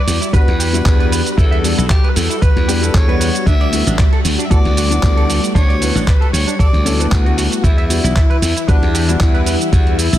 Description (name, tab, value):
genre	nu-disco, nu disco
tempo	115 BPM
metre	4/4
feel	swing 54% on 16ths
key	E dorian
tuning	A4 = 439 Hz
part	raspy tenor saxophone	melody	0.0-10.2 s	D4 to E5	-23 LUFS	left 1 dB	analog delay
part	string machine, full ensemble	sustained chords	0.0-10.2 s	E3 to F#4	-23 LUFS	left 1 dB	ensemble chorus, sidechain pumping
part	glassy slap bass	bass	0.1-10.2 s	A1 to E2	-17 LUFS	equal	sidechain pumping
part	dusty soul sampler-style drum kit	drums	0.1-10.2 s	handclaps, hi-hat, shaker	-22 LUFS	right 2 dB	soft clipping on snare
part	clean electric guitar	riff	0.2-9.6 s	C#4 to E5	-27 LUFS	right 4 dB	ensemble chorus
part	dark baby grand piano	accompaniment	0.3-10.0 s	G3 to F#5	-23 LUFS	left 4 dB	none
part	electronic kick drum	drums	0.3-9.8 s	none	-13 LUFS	equal	none
room	little or no reverb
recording	dense, heavily limited modern master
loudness	-12 LUFS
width	side -13 dB against mid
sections	0.0-10.2 A section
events	none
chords	0.0 Em7; 3.5 D6; 7.6 Em7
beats	0.33 0.85 | 1.38 1.90 2.42 2.94 | 3.46 3.98 4.51 5.03 | 5.55 6.07 6.59 7.12 | 7.64 8.16 8.68 9.20 | 9.72